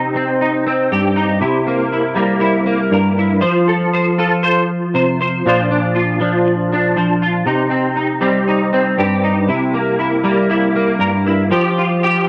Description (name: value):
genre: highlife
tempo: 119 BPM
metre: 4/4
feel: swing 53% on 16ths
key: unclear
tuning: A4 = 439 Hz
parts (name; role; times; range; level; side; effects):
- semi-hollow electric guitar; solo; 0.0-12.3 s; G2 to C5; -16 LUFS; equal; ensemble chorus
room: little or no reverb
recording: none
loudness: -16 LUFS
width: mono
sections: 0.0-12.3 A section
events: none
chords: 0.0 Cm; 1.4 C7; 3.4 F; 5.4 Bbadd9; 7.5 Cm; 9.5 C7; 11.5 Fsus2